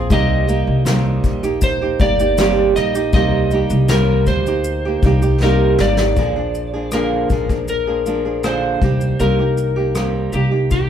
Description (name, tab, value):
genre	acoustic pop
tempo	79 BPM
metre	4/4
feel	straight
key	C minor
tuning	A4 = 441 Hz
part	electric slide guitar	melody	0.0-10.9 s	G4 to Eb5	-21 LUFS	left 2 dB	none
part	flamenco guitar	accompaniment	0.0-10.9 s	Bb2 to Ab4	-19 LUFS	right 4 dB	none
part	upright bass	bass	0.0-10.9 s	G1 to D2	-19 LUFS	equal	none
part	soft brush drum kit	drums	0.1-10.9 s	kick drum, rim click, shaker, snare drum	-21 LUFS	left 2 dB	none
room	light reverb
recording	band playing live in one room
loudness	-14 LUFS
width	side -9 dB against mid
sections	0.0-6.2 A section; 6.2-10.9 B section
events	drum fill 5.4-6.2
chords	0.1 Cm7; 6.2 Bb7; 8.8 Cm7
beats	| 0.10 0.86 1.61 2.37 | 3.13 3.89 4.65 5.41 | 6.16 6.92 7.68 8.44 | 9.20 9.96 10.72